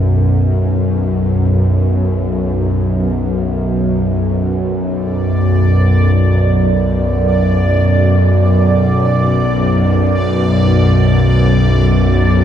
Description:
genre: dark ambient drone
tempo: free time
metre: none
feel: none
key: B minor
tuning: A4 = 440 Hz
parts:
  - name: bowed-like drone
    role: drone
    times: 0.0-12.4 s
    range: B1 to F#2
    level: -12 LUFS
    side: equal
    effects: built-in reverb
  - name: bubbling stepped-filter texture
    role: texture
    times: 5.4-12.4 s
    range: D5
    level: -20 LUFS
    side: right 3 dB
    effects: chorus, built-in reverb
room: wet cathedral reverb, RT60 7.2 s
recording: dark, warm production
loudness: -11 LUFS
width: side -9 dB against mid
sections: 0.0-12.4 A section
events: none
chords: 0.0 B5

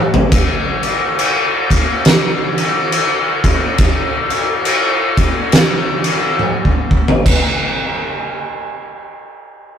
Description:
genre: metal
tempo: 69 BPM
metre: 4/4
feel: swing 60% on 8ths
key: none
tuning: none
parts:
  - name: oversized low-tuned drum kit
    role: drums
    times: 0.1-7.5 s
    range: crash cymbal, kick drum, snare drum, toms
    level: -13 LUFS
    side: equal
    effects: none
room: light reverb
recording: rough rehearsal-room recording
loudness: -13 LUFS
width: side -8 dB against mid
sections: 0.3-7.2 A section; 7.2-9.8 B section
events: drum fill 0.0-0.3, 6.4-7.2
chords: none

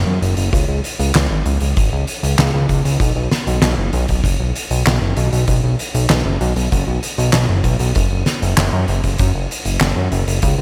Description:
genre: synthwave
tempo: 97 BPM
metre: 4/4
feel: straight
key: unclear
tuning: A4 = 440 Hz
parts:
  - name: fat analog bass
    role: bass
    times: 0.0-10.6 s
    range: F#1 to F#2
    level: -19 LUFS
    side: equal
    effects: none
  - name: oversized low-tuned drum kit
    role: drums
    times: 0.2-10.5 s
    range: handclaps, hi-hat, snare drum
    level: -22 LUFS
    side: equal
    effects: gated reverb
  - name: kick drum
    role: drums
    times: 0.5-10.6 s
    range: none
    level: -23 LUFS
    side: equal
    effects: none
room: light reverb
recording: bright 1980s-style digital production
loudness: -17 LUFS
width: mono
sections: 0.0-10.6 A section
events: none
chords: none

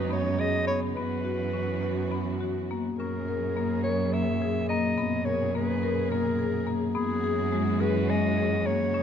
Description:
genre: contemporary instrumental, chamber music in an uneven meter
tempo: 210 BPM (eighths)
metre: 7/8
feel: straight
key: F# mixolydian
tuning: A4 = 440 Hz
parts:
  - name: breathy clarinet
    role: melody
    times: 0.0-9.0 s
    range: G#4 to E5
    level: -31 LUFS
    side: left 1 dB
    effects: none
  - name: warm studio string section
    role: sustained chords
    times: 0.0-9.0 s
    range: A#2 to G#4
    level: -37 LUFS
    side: equal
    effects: none
  - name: marimba with medium hard mallets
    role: arpeggios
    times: 0.0-9.0 s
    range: G#3 to A#4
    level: -29 LUFS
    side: left 6 dB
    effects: none
  - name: warm cello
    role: bass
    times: 0.0-9.0 s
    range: F#2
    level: -30 LUFS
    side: right 7 dB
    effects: none
room: light reverb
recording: close, detailed microphones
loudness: -25 LUFS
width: side -8 dB against mid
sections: 0.0-3.0 A section; 3.0-9.0 B section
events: none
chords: 0.0 B69/F#; 1.0 F#7sus4; 3.0 F#add9; 5.0 G#madd9/F#; 7.0 Eadd9/F#

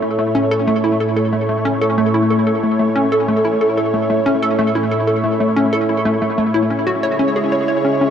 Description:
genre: ambient, sequencer-driven space music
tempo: 92 BPM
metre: 4/4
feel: straight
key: A major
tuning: A4 = 440 Hz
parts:
  - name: lush unison pad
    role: sustained chords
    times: 0.0-8.1 s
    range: A2 to C#5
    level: -17 LUFS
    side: equal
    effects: chorus, phaser
  - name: hollow square pluck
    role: riff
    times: 0.0-8.1 s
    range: A3 to C#5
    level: -17 LUFS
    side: equal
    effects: lush chorus, tape echo
room: wet huge ambient reverb, RT60 8.5 s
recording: dark, warm production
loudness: -14 LUFS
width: side -8 dB against mid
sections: 0.0-8.1 A section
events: none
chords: 0.0 A; 6.7 C#m

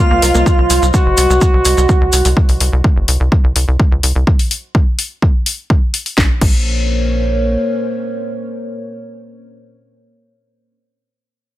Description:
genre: melodic techno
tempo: 126 BPM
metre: 4/4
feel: straight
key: Bb minor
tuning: A4 = 440 Hz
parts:
  - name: expressive portamento lead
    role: melody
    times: 0.0-2.3 s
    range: F4 to Gb4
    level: -16 LUFS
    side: right 1 dB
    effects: lush chorus, cassette tape, sidechain pumping, tape echo
  - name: airy dreamy lead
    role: second line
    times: 0.0-0.8 s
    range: F5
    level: -21 LUFS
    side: equal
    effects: chorus, phaser, sidechain pumping, digital delay
  - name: dark analog pad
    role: sustained chords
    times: 0.0-10.7 s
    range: Gb3 to C6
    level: -22 LUFS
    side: equal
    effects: wide subtle chorus, sidechain pumping
  - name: tight sequencer bass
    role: bass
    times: 0.1-7.6 s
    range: Gb1 to Db2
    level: -15 LUFS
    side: equal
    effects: sidechain pumping
  - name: house drum kit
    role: drums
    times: 0.2-6.6 s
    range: crash cymbal, hi-hat, snare drum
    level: -18 LUFS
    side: left 3 dB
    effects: overdrive
  - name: maracas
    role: percussion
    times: 0.2-2.3 s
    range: none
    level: -21 LUFS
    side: right 3 dB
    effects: none
  - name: electronic kick drum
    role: drums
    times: 0.5-6.6 s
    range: none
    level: -12 LUFS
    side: equal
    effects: overdrive
room: digital ambience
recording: none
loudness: -11 LUFS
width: side -15 dB against mid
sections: 0.0-6.2 A section; 6.2-10.0 B section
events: drop 0.0-6.2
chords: 0.0 Cdim; 6.2 Bbmadd9

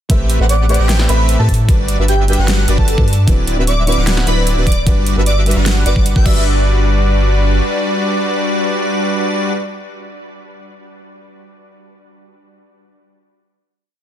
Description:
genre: future bass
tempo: 151 BPM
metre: 4/4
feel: half-time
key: G major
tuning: A4 = 440 Hz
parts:
  - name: felt-muted upright piano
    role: accompaniment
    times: 0.1-9.6 s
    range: D3 to C5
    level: -24 LUFS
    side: right 2 dB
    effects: sidechain pumping, ping-pong delay
  - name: airy dreamy lead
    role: arpeggios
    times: 0.1-9.5 s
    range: D5 to G5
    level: -26 LUFS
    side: left 1 dB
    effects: chorus, sidechain pumping, ping-pong delay
  - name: soft supersaw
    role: riff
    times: 0.1-9.5 s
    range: F#3 to G5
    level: -20 LUFS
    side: equal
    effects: sidechain pumping
  - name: saturated sub bass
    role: bass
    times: 0.1-7.6 s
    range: D1 to A2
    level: -14 LUFS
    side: equal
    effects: sidechain pumping
  - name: big-room dance drum kit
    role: drums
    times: 0.1-6.3 s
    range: crash cymbal, hi-hat, snare drum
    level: -22 LUFS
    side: right 1 dB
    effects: overdrive, studio reverb
  - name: electronic kick drum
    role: drums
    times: 0.1-6.3 s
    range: none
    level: -13 LUFS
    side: equal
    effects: overdrive, studio reverb
  - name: airy dreamy lead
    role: melody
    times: 0.5-6.4 s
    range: G4 to G5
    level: -22 LUFS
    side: right 1 dB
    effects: chorus, sidechain pumping, tape echo
room: digital ambience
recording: dense, heavily limited modern master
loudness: -12 LUFS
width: side -11 dB against mid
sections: 0.1-6.5 drop; 6.5-9.6 final note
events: drop 0.1-6.5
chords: 0.1 Am9; 1.7 Gmaj7; 3.3 D13; 4.9 Gmaj7

